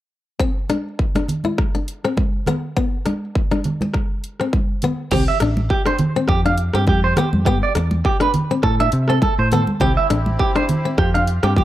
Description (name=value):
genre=highlife guitar band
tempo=102 BPM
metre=4/4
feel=swing 54% on 16ths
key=C major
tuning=A4 = 441 Hz
part: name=fingerpicked plugged-in steel-string acoustic guitar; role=accompaniment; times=0.4-11.6 s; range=B3 to E4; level=-23 LUFS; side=left 5 dB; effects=none
part: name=dubstep drum kit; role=drums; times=0.4-11.6 s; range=crash cymbal, hi-hat, kick drum, rim click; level=-21 LUFS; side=equal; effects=overdrive
part: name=congas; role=percussion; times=0.7-11.6 s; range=none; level=-23 LUFS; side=right 2 dB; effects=none
part: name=clean electric guitar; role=arpeggios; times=5.1-11.6 s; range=G4 to F5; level=-21 LUFS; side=right 4 dB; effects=analog delay
part: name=fingered electric bass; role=bass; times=5.1-11.6 s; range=A1 to C3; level=-19 LUFS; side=equal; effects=none
part: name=accordion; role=sustained chords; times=9.8-11.6 s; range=C4 to G4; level=-29 LUFS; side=equal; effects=light tremolo tuning
room=light reverb, digital ambience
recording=none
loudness=-16 LUFS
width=side -13 dB against mid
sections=0.4-5.1 A section; 5.1-11.6 B section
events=none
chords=0.4 C; 1.6 Bm; 3.9 N.C.; 5.1 C5; 6.3 Fsus2; 7.5 G; 8.6 Am; 9.8 C; 11.0 Fsus2